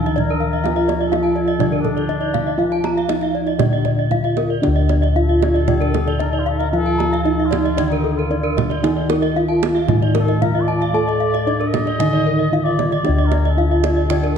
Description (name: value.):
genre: Balinese gamelan.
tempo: 114-128 BPM.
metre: 4/4.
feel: straight.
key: D pelog.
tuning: A4 = 440 Hz.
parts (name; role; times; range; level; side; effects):
gamelan-type bronze metallophone; melody; 0.0-14.4 s; D4 to A4-30c; -22 LUFS; right 2 dB; none.
trumpet with cup mute; second line; 0.0-14.4 s; D4 to Eb5+20c; -27 LUFS; left 3 dB; none.
gamelan-type bronze metallophone; accompaniment; 0.0-14.4 s; D3 to A3-30c; -25 LUFS; left 1 dB; none.
gamelan-type bronze metallophone; arpeggios; 0.0-14.2 s; A4-30c to Bb5-20c; -24 LUFS; left 5 dB; none.
gamelan-type bossed gongs; bass; 0.0-14.4 s; D2 to A4-30c; -20 LUFS; left 1 dB; none.
gamelan-type bronze metallophone; arpeggios; 0.1-14.4 s; Bb4-20c to A5-30c; -26 LUFS; right 7 dB; none.
kendang; percussion; 0.1-14.3 s; none; -25 LUFS; right 7 dB; none.
room: moderate concert hall reverb, RT60 2.2 s.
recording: dark, warm production.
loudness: -15 LUFS.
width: side -7 dB against mid.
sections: 0.0-4.6 A section; 4.6-14.4 B section.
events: none.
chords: none.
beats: 0.17 | 0.65 1.12 1.60 2.08 | 2.58 3.08 3.58 4.10 | 4.62 5.15 5.67 6.20 | 6.73 7.25 7.78 8.31 | 8.83 9.36 9.88 10.41 | 10.94 11.46 11.99 12.52 | 13.04 13.57 14.10.